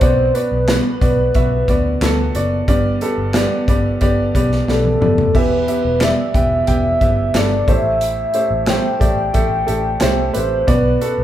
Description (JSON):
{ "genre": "piano-driven pop", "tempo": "90 BPM", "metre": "4/4", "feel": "straight", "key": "E minor", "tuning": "A4 = 441 Hz", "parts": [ { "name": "soft octave-layered synth lead", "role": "melody", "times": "0.0-11.2 s", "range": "A4 to G5", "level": "-18 LUFS", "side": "equal", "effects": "chorus" }, { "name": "clear upright piano", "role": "accompaniment", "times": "0.0-11.2 s", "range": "G2 to G5", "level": "-19 LUFS", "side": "right 2 dB", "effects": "none" }, { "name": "vintage muted fingered electric bass", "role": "bass", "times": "0.0-11.2 s", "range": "E1 to D2", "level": "-21 LUFS", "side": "equal", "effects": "none" }, { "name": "modern studio drum kit", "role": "drums", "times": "0.0-11.2 s", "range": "crash cymbal, handclaps, hi-hat, kick drum, snare drum, toms", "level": "-19 LUFS", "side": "equal", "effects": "none" } ], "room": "moderate large studio reverb, RT60 0.8 s", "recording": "band playing live in one room", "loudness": "-14 LUFS", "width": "side -12 dB against mid", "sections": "0.0-11.2 A section", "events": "drum fill 4.7-5.3", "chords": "0.0 Bm; 2.7 G; 5.3 Em; 7.7 Am7; 10.7 Bm", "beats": "| 0.01 0.68 1.35 2.01 | 2.68 3.35 4.01 4.68 | 5.35 6.01 6.68 7.35 | 8.01 8.68 9.35 10.01 | 10.68" }